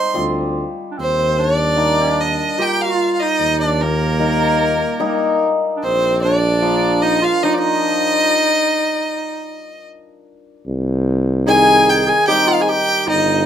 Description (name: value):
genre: klezmer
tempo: 74 BPM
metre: 3/4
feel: straight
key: Eb major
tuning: A4 = 441 Hz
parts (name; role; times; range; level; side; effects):
- rich violin; melody; 0.0-13.5 s; Bb4 to C6; -17 LUFS; left 1 dB; none
- bright clarinet; second line; 0.0-13.5 s; Bb3 to C5; -20 LUFS; right 5 dB; none
- hammered dulcimer; accompaniment; 0.0-13.1 s; Eb3 to F4; -21 LUFS; left 3 dB; none
- warm tuba; bass; 0.2-13.5 s; G1 to Eb2; -20 LUFS; equal; none
room: moderate studio reverb, RT60 0.6 s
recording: minimal, uncompressed stereo recording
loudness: -14 LUFS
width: side -9 dB against mid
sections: 1.0-10.7 A section; 10.7-13.5 B section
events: stop 8.3-10.7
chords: 0.0 C5; 1.0 Eb; 5.8 Bb; 8.3 N.C.; 10.7 Cm